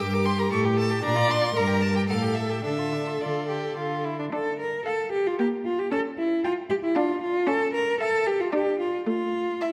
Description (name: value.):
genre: quick classical-period movement for string quartet.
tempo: 106-117 BPM.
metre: 3/4.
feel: rubato.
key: D minor.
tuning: A4 = 444 Hz.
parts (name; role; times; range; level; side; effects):
clear violin; melody; 0.0-9.7 s; D5 to D6; -34 LUFS; equal; none.
clear violin; second line; 0.0-9.7 s; D4 to G5; -35 LUFS; equal; none.
clear viola; accompaniment; 0.0-9.5 s; A3 to D5; -31 LUFS; equal; none.
rich cello; bass; 0.0-9.7 s; G2 to Bb4; -28 LUFS; equal; none.
room: wet concert hall reverb, RT60 1.8 s.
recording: none.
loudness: -25 LUFS.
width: mono.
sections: 0.0-4.3 A section; 4.3-9.7 B section.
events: none.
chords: 0.0 Gm; 0.5 A7(no3); 1.0 Bb; 1.6 Gm; 2.1 A5; 2.6 Dm; 5.4 Gm/Bb; 5.9 A7/C#; 7.0 Dm; 7.5 A/C#; 8.5 Dm; 9.1 A5.